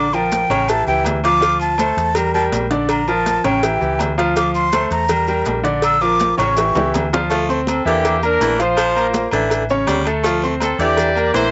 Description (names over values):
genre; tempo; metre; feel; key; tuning
latin, salsa; 163 BPM; 4/4; straight; D minor; A4 = 439 Hz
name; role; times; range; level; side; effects
breathy mellow silver concert flute; melody; 0.0-6.9 s; G5 to E6; -20 LUFS; equal; none
clear baby grand piano; accompaniment; 0.0-11.5 s; C#3 to C6; -22 LUFS; equal; none
hollow-body short-scale fingered electric bass; bass; 0.0-11.5 s; A1 to E2; -27 LUFS; equal; none
agogo bells and timbales; percussion; 0.1-11.5 s; none; -29 LUFS; equal; none
congas; percussion; 0.1-11.5 s; none; -31 LUFS; equal; none
maracas; percussion; 0.1-11.5 s; none; -37 LUFS; equal; none
cowbell and bongos; percussion; 0.3-11.5 s; none; -27 LUFS; equal; none
raspy baritone saxophone; second line; 7.3-11.5 s; D3 to A3; -23 LUFS; equal; none
clear horn section; melody; 7.7-11.5 s; Bb3 to D5; -20 LUFS; equal; none
room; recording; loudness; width
little or no reverb; dry, gritty hardware recording, nothing above 7.8 kHz; -17 LUFS; mono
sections
0.0-7.3 A section; 7.3-11.5 B section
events
flute solo 0.0-7.3; drum fill 6.4-7.3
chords
0.0 Bb; 0.7 A7; 1.4 Dm7; 2.2 Em7b5; 2.9 Bb; 3.6 A7; 4.4 Dm7; 5.1 Em7b5; 5.8 Bb; 6.6 A7; 7.3 Dm7; 8.0 C9; 8.8 Bbadd9; 9.5 A7; 10.2 Dm7; 11.0 Em7b5